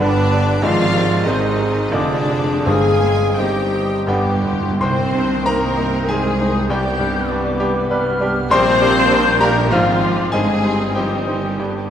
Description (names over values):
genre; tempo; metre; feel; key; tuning
classical, romantic movement for piano and orchestra; 78-101 BPM; 3/4; rubato; C minor; A4 = 440 Hz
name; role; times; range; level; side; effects
bright concert grand piano; melody; 0.0-11.9 s; F1 to C6; -20 LUFS; left 1 dB; none
rich studio violin section; melody; 0.0-11.9 s; F4 to Ab5; -28 LUFS; left 3 dB; none
clear studio violin section; second line; 0.0-11.9 s; D4 to C5; -25 LUFS; left 3 dB; none
mellow clarinet; second line; 0.0-11.7 s; D4 to F5; -28 LUFS; left 1 dB; none
mellow cor anglais; second line; 0.0-11.7 s; D4 to C5; -30 LUFS; right 3 dB; none
warm studio viola section; accompaniment; 0.0-11.9 s; C3 to G4; -29 LUFS; right 1 dB; none
clear trombone section; sustained chords; 0.0-4.4 s; C3 to C4; -27 LUFS; right 4 dB; none
warm French horn section; sustained chords; 0.0-11.9 s; D3 to Ab4; -24 LUFS; left 3 dB; none
mellow tuba; bass; 0.0-11.9 s; F1 to C2; -28 LUFS; right 3 dB; none
warm studio cello section; bass; 0.0-11.9 s; D3 to C4; -24 LUFS; right 2 dB; none
warm studio double bass section; bass; 0.0-11.9 s; F1 to C2; -25 LUFS; right 3 dB; none
bright large flute ensemble; second line; 0.6-11.9 s; C6 to G6; -26 LUFS; left 3 dB; none
mellow bassoon; accompaniment; 0.6-11.7 s; G3 to D4; -28 LUFS; right 2 dB; none
timpani; percussion; 2.7-4.8 s; G2; -25 LUFS; equal; none
room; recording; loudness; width
wet concert hall reverb, RT60 2.1 s; none; -14 LUFS; side -9 dB against mid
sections
0.0-4.8 A section; 4.8-11.9 B section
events
timpani fill 4.1-4.8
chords
0.0 G; 0.6 Ab; 1.9 Ddim/F; 2.7 Cm/G; 4.1 G; 4.8 Cm; 6.7 G/C; 8.5 Gm/Bb; 9.7 Fm/Ab; 10.3 Cm/G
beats
0.00 | 0.63 1.26 1.93 | 2.66 3.38 4.08 | 4.81 5.46 6.08 | 6.70 7.30 7.91 | 8.51 9.11 9.71 | 10.33 10.96 11.59